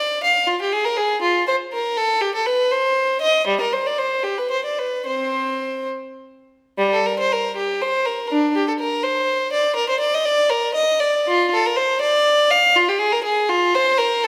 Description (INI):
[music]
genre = classical, baroque-style suite movement for unaccompanied violin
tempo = 65-84 BPM (dotted quarters)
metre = 6/8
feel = rubato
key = C minor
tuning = A4 = 444 Hz
[part]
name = rich violin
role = solo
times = 0.0-14.3 s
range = G3 to F5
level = -19 LUFS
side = equal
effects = none
[sound]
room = moderate recital hall reverb, RT60 1.4 s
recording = none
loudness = -19 LUFS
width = mono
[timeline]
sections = 0.0-6.8 A section; 6.8-14.3 A section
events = none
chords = none